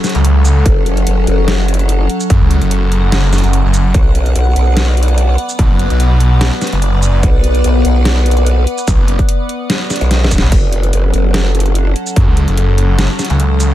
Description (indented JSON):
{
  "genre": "heavy wobble dubstep",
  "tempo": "146 BPM",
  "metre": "4/4",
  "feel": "swing 53% on 16ths, half-time",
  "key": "F# minor",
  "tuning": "A4 = 439 Hz",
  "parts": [
    { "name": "evolving wavetable pad", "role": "sustained chords", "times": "0.0-13.7 s", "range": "F#3 to F#5", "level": "-19 LUFS", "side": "left 1 dB", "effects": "chorus, built-in reverb, phaser, sidechain pumping" },
    { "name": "dubstep drum kit", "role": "drums", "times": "0.0-13.7 s", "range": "crash cymbal, hi-hat, shaker, snare drum", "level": "-18 LUFS", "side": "equal", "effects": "overdrive" },
    { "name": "snarling distorted saw bass", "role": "bass", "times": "0.1-13.7 s", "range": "F#1 to F#2", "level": "-11 LUFS", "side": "equal", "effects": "overdrive" },
    { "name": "growl bass", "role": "bass", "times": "0.7-11.9 s", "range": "F#1 to B1", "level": "-12 LUFS", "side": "equal", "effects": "chorus, overdrive" },
    { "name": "electronic kick drum", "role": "drums", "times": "0.7-12.3 s", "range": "none", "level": "-12 LUFS", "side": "equal", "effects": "overdrive" }
  ],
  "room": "little or no reverb",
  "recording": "none",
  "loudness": "-10 LUFS",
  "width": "side -13 dB against mid",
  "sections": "0.0-13.7 A section",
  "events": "drum fill 10.1-10.5",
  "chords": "0.0 F#m; 3.9 Bm; 10.5 F#m",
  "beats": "0.25 | 0.66 1.07 1.48 1.89 | 2.30 2.71 3.12 3.53 | 3.94 4.36 4.77 5.18 | 5.59 6.00 6.41 6.82 | 7.23 7.64 8.05 8.46 | 8.88 9.29 9.70 10.11 | 10.52 10.93 11.34 11.75 | 12.16 12.57 12.99 13.40"
}